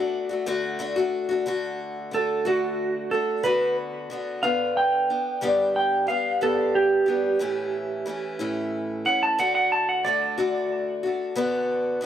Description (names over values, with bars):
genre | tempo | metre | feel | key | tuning
rock | 61 BPM (dotted quarters) | 6/8 | straight | D major | A4 = 440 Hz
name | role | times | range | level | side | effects
clean lap steel guitar | melody | 0.0-12.0 s | F#4 to A5 | -24 LUFS | right 2 dB | tape echo
picked acoustic archtop guitar | accompaniment | 0.0-12.1 s | G2 to G4 | -26 LUFS | left 2 dB | none
room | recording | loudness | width
light reverb | none | -22 LUFS | side -10 dB against mid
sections
0.0-1.5 A section; 1.5-12.1 B section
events
electric slide guitar solo 1.5-12.1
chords
0.0 D; 3.4 Bm/D; 5.4 G; 7.4 A; 9.4 D; 11.4 Bm/D